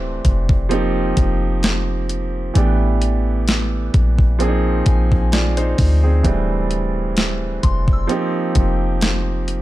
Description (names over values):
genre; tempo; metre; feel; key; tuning
contemporary R&B; 65 BPM; 4/4; swing 54% on 16ths; unclear; A4 = 441 Hz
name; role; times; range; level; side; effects
clear concert grand piano; accompaniment; 0.0-9.6 s; E3 to D5; -21 LUFS; right 3 dB; none
clean 808-style bass; bass; 0.0-9.6 s; D1 to D2; -18 LUFS; equal; none
soft synth bell; texture; 0.0-8.8 s; Ab5 to E6; -34 LUFS; left 4 dB; chorus, ping-pong delay
crisp 8-bit digital drum machine; drums; 0.2-9.6 s; hi-hat, kick drum, snare drum; -18 LUFS; equal; overdrive
room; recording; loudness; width
digital ambience; dark, warm production; -15 LUFS; side -16 dB against mid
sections
0.0-9.6 A section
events
none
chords
0.0 D9sus4; 0.7 F9sus4; 2.6 A9sus4; 4.4 Bb9sus4; 6.2 D9sus4; 8.1 F9sus4